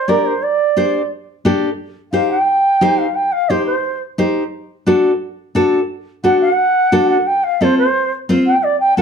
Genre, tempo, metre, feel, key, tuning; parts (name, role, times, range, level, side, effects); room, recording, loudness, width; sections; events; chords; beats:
latin; 175 BPM; 4/4; straight; A4 = 441 Hz
mellow bansuri; melody; 0.0-4.0, 6.2-9.0 s; C5 to G5; -14 LUFS; right 2 dB
nylon-string guitar; accompaniment; 0.1-9.0 s; C4 to C5; -15 LUFS; left 1 dB
moderate large studio reverb, RT60 0.8 s; dark, warm production; -13 LUFS; side -6 dB against mid
0.0-9.0 A section
bansuri solo 0.0-9.0
0.0 Gm; 1.8 Cm; 4.5 D; 7.3 F
0.08 | 0.42 0.77 1.11 1.45 | 1.79 2.13 2.47 2.82 | 3.16 3.50 3.84 4.18 | 4.53 4.87 5.21 5.55 | 5.90 6.24 6.58 6.92 | 7.26 7.61 7.95 8.29 | 8.63 8.98